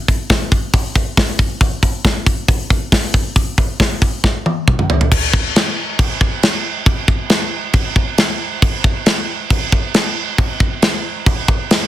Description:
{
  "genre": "metal",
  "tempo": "137 BPM",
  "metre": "4/4",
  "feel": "straight",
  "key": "none",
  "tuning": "none",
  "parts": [
    { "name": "tight metal drum kit", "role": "drums", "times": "0.1-11.8 s", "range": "crash cymbal, hi-hat, kick drum, snare drum, toms", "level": "-13 LUFS", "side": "equal", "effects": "soft clipping on kick" }
  ],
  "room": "little or no reverb",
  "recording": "dense, heavily limited modern master",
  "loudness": "-14 LUFS",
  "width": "side -13 dB against mid",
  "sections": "0.0-5.1 A section; 5.1-11.9 B section",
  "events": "drum fill 4.2-5.1",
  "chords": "none",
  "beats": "0.30 0.74 1.18 | 1.62 2.05 2.49 2.93 | 3.37 3.81 4.24 4.68 | 5.12 5.56 6.00 6.43 | 6.87 7.31 7.75 8.19 | 8.63 9.07 9.51 9.95 | 10.39 10.83 11.27 11.71"
}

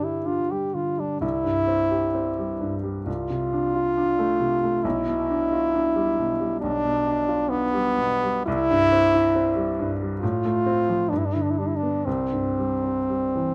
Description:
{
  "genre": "classical, romantic duo for French horn and grand piano",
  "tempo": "66 BPM",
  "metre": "4/4",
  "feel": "uneven beats, rubato",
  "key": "C major",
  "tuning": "A4 = 440 Hz",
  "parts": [
    { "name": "clear French horn", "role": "melody", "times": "0.0-13.5 s", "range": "B3 to G4", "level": "-25 LUFS", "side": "equal", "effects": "none" },
    { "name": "warm grand piano", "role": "accompaniment", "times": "0.0-13.5 s", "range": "B1 to G4", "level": "-29 LUFS", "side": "equal", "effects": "none" }
  ],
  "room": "light reverb",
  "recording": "close, detailed microphones",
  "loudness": "-24 LUFS",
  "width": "mono",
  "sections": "0.0-13.5 A section",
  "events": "none",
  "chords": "0.0 G5; 1.2 C; 3.1 Dm7/C; 4.8 G7/B; 8.5 C; 10.2 F/A; 11.1 G; 12.1 C",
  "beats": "0.27 | 1.23 2.16 3.07 3.97 | 4.85 5.73 6.62 7.50 | 8.46 9.35 10.22 11.10 | 12.06 13.09"
}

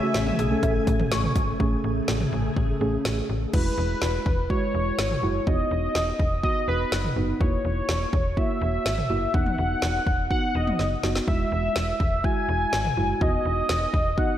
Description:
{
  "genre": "synth-pop",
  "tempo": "124 BPM",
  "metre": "4/4",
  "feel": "straight",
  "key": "E major",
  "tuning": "A4 = 440 Hz",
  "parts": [
    { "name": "octave-doubled lead", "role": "melody", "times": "0.0-14.4 s", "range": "B4 to G#5", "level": "-27 LUFS", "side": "left 1 dB", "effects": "chorus, analog delay" },
    { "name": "muted felt-like synth keys", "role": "accompaniment", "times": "0.0-14.4 s", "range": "G#3 to A4", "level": "-29 LUFS", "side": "right 2 dB", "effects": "chorus" },
    { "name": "soft string machine", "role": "sustained chords", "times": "0.0-3.5 s", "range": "C#3 to G#5", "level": "-31 LUFS", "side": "left 2 dB", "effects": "ensemble chorus" },
    { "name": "warbly dusty pluck", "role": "arpeggios", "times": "0.0-1.3 s", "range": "C#4 to C#6", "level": "-32 LUFS", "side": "left 2 dB", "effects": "chorus, analog delay" },
    { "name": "slap-like FM bass", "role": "bass", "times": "0.1-14.2 s", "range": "E1 to B1", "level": "-28 LUFS", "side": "equal", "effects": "none" },
    { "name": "deep house drum kit", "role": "drums", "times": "0.1-14.3 s", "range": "crash cymbal, hi-hat, kick drum, snare drum, toms", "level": "-27 LUFS", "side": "equal", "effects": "none" }
  ],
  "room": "moderate lush hall reverb, RT60 2.5 s",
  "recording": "dreamy mix soaked in reverb",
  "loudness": "-22 LUFS",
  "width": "side -11 dB against mid",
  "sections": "0.0-1.6 A section; 1.6-3.5 B section; 3.5-14.4 C section",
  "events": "drum fill 10.8-11.3",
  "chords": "0.0 Amaj7; 3.5 Eadd9; 5.5 B/E; 7.4 F#7/E; 9.3 B/E; 11.3 Eadd9; 13.2 B/E",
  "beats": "0.15 0.63 1.11 | 1.60 2.08 2.57 3.05 | 3.53 4.02 4.50 4.99 | 5.47 5.95 6.44 6.92 | 7.41 7.89 8.37 8.86 | 9.34 9.82 10.31 10.79 | 11.28 11.76 12.24 12.73 | 13.21 13.70 14.18"
}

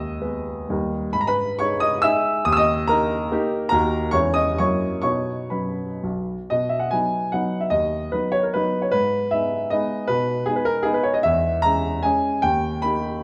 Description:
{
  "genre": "classical, romantic triple-time dance for piano with dotted rhythms",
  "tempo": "112-165 BPM",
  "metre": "3/4",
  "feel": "rubato",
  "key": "G# minor, B major from 3.7 s",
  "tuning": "A4 = 439 Hz",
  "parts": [
    { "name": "warm baby grand piano", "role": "solo", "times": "0.0-13.2 s", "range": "B1 to E6", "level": "-22 LUFS", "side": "equal", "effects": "none" }
  ],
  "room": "moderate recital hall reverb, RT60 1.5 s",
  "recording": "none",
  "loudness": "-22 LUFS",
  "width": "mono",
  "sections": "0.0-6.5 A section; 6.5-13.2 B section",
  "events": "none",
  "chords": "0.0 G#m/D#; 0.7 D#; 1.1 G#m; 2.5 D#; 3.7 D#m; 4.1 C#m/E; 4.6 F#7; 5.0 B; 7.7 B/D#; 8.9 G#m; 10.1 G#m/B; 11.2 C#m/E; 12.4 D#",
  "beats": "0.21 0.69 | 1.14 1.59 2.03 | 2.46 2.88 3.32 | 3.72 4.14 4.59 | 5.03 5.52 6.04 | 6.51 6.93 7.34 | 7.73 8.13 8.54 | 8.92 9.30 9.70 | 10.07 10.46 10.85 | 11.23 11.63 12.04 | 12.43 12.83"
}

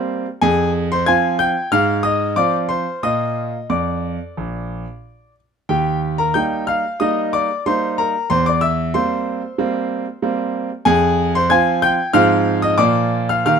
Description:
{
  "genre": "classical-period piano sonatina",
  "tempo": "92 BPM",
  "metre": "4/4",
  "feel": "rubato",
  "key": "unclear",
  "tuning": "A4 = 438 Hz",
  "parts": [
    { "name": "clear concert grand piano", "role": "solo", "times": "0.0-13.6 s", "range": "Bb1 to Ab6", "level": "-16 LUFS", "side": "equal", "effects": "none" }
  ],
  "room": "light reverb",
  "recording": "close, detailed microphones",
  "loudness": "-16 LUFS",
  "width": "side -6 dB against mid",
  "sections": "0.0-13.6 A section",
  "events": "none",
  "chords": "0.4 Fm; 1.7 Fm/Ab; 3.0 Bb; 5.7 Eb; 8.3 C7/E; 10.9 Fm; 12.1 Fm/Ab; 12.8 Bb",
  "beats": "| 0.43 1.07 1.71 2.36 | 3.02 3.69 4.36 5.02 | 5.68 6.34 7.00 7.65 | 8.30 8.95 9.59 10.22 | 10.86 11.50 12.14 12.79 | 13.47"
}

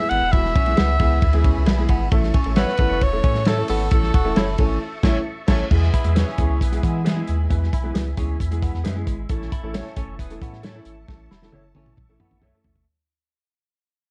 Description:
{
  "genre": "uptempo 1960s-style soul",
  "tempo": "134 BPM",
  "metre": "4/4",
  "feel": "straight",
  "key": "A major",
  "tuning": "A4 = 440 Hz",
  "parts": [
    { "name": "bright alto saxophone", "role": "melody", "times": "0.0-5.2 s", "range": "A4 to F#5", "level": "-26 LUFS", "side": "equal", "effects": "none" },
    { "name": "warm studio string section", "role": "second line", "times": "0.0-12.8 s", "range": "E4 to E6", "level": "-41 LUFS", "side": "equal", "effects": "none" },
    { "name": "clear concert grand piano", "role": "accompaniment", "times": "0.0-12.7 s", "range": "E3 to B4", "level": "-32 LUFS", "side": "equal", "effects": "none" },
    { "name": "tonewheel organ", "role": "sustained chords", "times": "0.0-12.8 s", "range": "E5 to C#6", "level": "-41 LUFS", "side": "equal", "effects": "overdrive, chorus vibrato, slow rotary speaker" },
    { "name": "clean electric guitar", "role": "riff", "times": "0.1-12.9 s", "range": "G#3 to A4", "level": "-34 LUFS", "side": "equal", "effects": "none" },
    { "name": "warm sub bass", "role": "bass", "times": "0.1-12.9 s", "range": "E1 to E3", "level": "-24 LUFS", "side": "equal", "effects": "none" },
    { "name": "warm soul drum kit", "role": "drums", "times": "0.1-12.9 s", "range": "crash cymbal, hi-hat, kick drum, ride cymbal, snare drum, toms", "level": "-23 LUFS", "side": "equal", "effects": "none" },
    { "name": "electric guitar through a small old amp", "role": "stabs", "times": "0.8-12.5 s", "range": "G#4 to E5", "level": "-33 LUFS", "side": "equal", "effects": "vibrato effect" },
    { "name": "clear horn section", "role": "second line", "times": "5.0-11.0 s", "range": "G#3 to C#5", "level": "-38 LUFS", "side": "equal", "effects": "none" }
  ],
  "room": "light reverb",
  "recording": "dark, warm production",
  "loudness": "-20 LUFS",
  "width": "mono",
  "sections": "0.0-5.7 A section; 5.7-12.9 B section",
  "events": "band accent 3.9-5.7; fade-out 5.7-12.9; drum fill 11.1-12.9",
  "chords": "0.0 E; 2.1 A; 5.7 E; 9.3 A",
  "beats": "| 0.33 0.78 1.23 1.67 | 2.12 2.57 3.02 3.46 | 3.91 4.36 4.81 5.26 | 5.70 6.15 6.60 7.05 | 7.50 7.95 8.39 8.84 | 9.29 9.74 10.19 10.63 | 11.08 11.53 11.98 12.43"
}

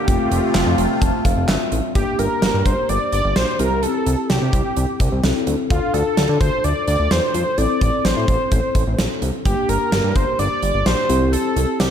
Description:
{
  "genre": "synth-pop",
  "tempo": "128 BPM",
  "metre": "4/4",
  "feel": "straight",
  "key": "G dorian",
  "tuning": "A4 = 440 Hz",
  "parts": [
    { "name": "octave-doubled lead", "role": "melody", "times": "0.0-11.9 s", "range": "F4 to D5", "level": "-22 LUFS", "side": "equal", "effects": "chorus, analog delay" },
    { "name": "mellow tine electric piano", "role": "accompaniment", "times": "0.0-11.9 s", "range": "A3 to A5", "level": "-24 LUFS", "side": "left 4 dB", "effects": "slow stereo tremolo" },
    { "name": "phased analog pad", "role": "sustained chords", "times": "0.0-1.9 s", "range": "C3 to F4", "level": "-24 LUFS", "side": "right 3 dB", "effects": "phaser, chorus" },
    { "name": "fat analog bass", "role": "bass", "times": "0.1-11.9 s", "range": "F1 to D3", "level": "-21 LUFS", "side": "equal", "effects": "none" },
    { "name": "huge arena drum kit", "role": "drums", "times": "0.1-11.9 s", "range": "handclaps, hi-hat, kick drum, snare drum", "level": "-22 LUFS", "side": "right 1 dB", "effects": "none" }
  ],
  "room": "moderate plate reverb, RT60 1.3 s, studio ambience",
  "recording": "dreamy mix soaked in reverb",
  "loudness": "-16 LUFS",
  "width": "side -8 dB against mid",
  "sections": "0.0-2.0 A section; 2.0-11.9 B section",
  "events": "tine electric piano fill 0.5-2.0",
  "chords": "0.1 Fadd9; 2.0 Gm; 3.6 C; 5.7 Dm; 7.6 Am; 9.5 Gm; 11.1 C",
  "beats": "| 0.08 0.55 1.02 1.49 | 1.95 2.42 2.89 3.36 | 3.83 4.30 4.77 5.24 | 5.70 6.17 6.64 7.11 | 7.58 8.05 8.52 8.99 | 9.45 9.92 10.39 10.86 | 11.33 11.80"
}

